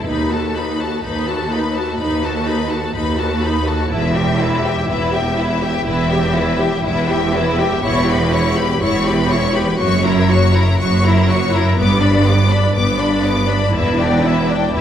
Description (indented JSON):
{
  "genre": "classical, slow romantic movement for string orchestra",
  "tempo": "62 BPM",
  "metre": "4/4",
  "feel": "rubato",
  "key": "E minor",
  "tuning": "A4 = 439 Hz",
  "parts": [
    { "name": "rich studio violin section", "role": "melody", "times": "0.0-14.8 s", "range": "E5 to D6", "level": "-24 LUFS", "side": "left 5 dB", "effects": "none" },
    { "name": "rich studio violin section", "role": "second line", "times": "0.0-14.8 s", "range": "A4 to E5", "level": "-24 LUFS", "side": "left 3 dB", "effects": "none" },
    { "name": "rich studio viola section", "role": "accompaniment", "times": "0.0-14.8 s", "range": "B3 to G4", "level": "-21 LUFS", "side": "left 1 dB", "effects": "none" },
    { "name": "rich studio cello section", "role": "bass", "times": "0.1-14.8 s", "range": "D#2 to G2", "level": "-19 LUFS", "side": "right 2 dB", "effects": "none" },
    { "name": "rich studio double bass section", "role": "bass", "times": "0.1-14.8 s", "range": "E1 to D#2", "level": "-19 LUFS", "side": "right 2 dB", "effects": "none" }
  ],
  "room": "wet scoring stage reverb, RT60 1.6 s",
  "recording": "recorded in a church or concert hall",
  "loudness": "-14 LUFS",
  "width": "side -9 dB against mid",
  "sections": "0.0-14.8 A section",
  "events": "none",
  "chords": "0.1 B7/D#; 3.9 Em; 9.8 F#7; 11.8 G; 13.7 Em7"
}